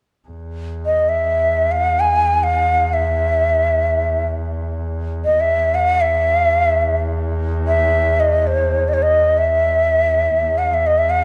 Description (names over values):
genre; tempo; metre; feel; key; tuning
Persian modal ensemble; free time; none; none; E dastgah chahargah; A4 = 439 Hz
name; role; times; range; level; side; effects
clear double bass; drone; 0.3-11.2 s; E2; -24 LUFS; equal; none
breathy ney; melody; 0.9-11.2 s; C5+42c to G#5; -18 LUFS; equal; none
room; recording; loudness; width
moderate recital hall reverb, RT60 1.6 s; dark, warm production; -17 LUFS; mono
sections
0.3-11.2 A section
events
none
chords
none